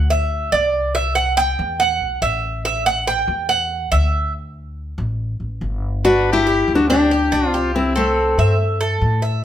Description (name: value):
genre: latin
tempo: 141 BPM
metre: 4/4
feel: straight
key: G major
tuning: A4 = 442 Hz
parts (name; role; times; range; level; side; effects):
- Cuban tres; arpeggios; 0.0-9.4 s; D4 to G5; -19 LUFS; right 3 dB; none
- upright bass; bass; 0.0-9.4 s; G1 to A2; -22 LUFS; left 1 dB; none
- nylon-string guitar; melody; 6.0-8.6 s; A3 to F#4; -17 LUFS; left 2 dB; none
- clear trumpet; second line; 6.1-8.6 s; C4 to B4; -22 LUFS; left 5 dB; none
room: moderate large studio reverb, RT60 1.0 s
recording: band playing live in one room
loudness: -16 LUFS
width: side -11 dB against mid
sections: 0.0-6.0 A section; 6.0-9.4 B section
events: Cuban tres solo 0.0-6.0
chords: 0.0 N.C.; 1.0 C6; 2.7 A5; 4.3 D5; 6.0 G5; 7.7 C6